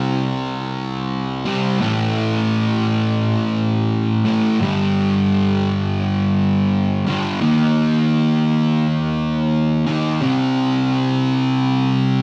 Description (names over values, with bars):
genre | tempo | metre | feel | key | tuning
rock | 86 BPM | 4/4 | straight | G minor | A4 = 440 Hz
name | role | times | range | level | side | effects
fuzz guitar | solo | 0.0-12.2 s | G2 to Eb4 | -18 LUFS | equal | distortion
room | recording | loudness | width
wet large studio reverb, RT60 0.9 s | band playing live in one room | -19 LUFS | mono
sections
0.0-4.6 A section; 4.6-12.2 B section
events
none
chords
0.0 C5; 1.8 A5; 4.6 G5; 7.4 Eb5; 10.2 C5